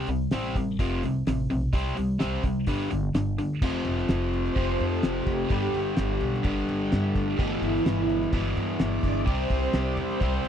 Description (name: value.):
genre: classic rock.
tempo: 127 BPM.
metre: 4/4.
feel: straight.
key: unclear.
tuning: A4 = 440 Hz.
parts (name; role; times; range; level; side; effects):
biting overdriven guitar; riff; 0.0-10.5 s; E2 to C4; -28 LUFS; left 1 dB; none.
upright bass; bass; 0.0-10.5 s; F1 to G2; -29 LUFS; equal; none.
cloth-damped thuddy drum kit; drums; 0.1-10.5 s; crash cymbal, hi-hat, kick drum, snare drum; -29 LUFS; equal; none.
string machine, full ensemble; sustained chords; 4.3-10.5 s; E4 to G5; -31 LUFS; right 1 dB; ensemble chorus.
room: light reverb.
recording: dry, close 1970s-style studio recording.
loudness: -24 LUFS.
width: side -9 dB against mid.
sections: 0.0-3.6 A section; 3.6-10.5 B section.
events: string machine solo 3.6-10.5.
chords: 0.0 C5; 0.8 F; 1.7 C5; 2.7 G5; 3.6 F5; 5.5 G5; 9.3 C.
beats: 0.32 0.79 1.26 | 1.73 2.20 2.67 3.15 | 3.62 4.09 4.56 5.03 | 5.50 5.97 6.44 6.91 | 7.38 7.86 8.33 8.80 | 9.27 9.74 10.21.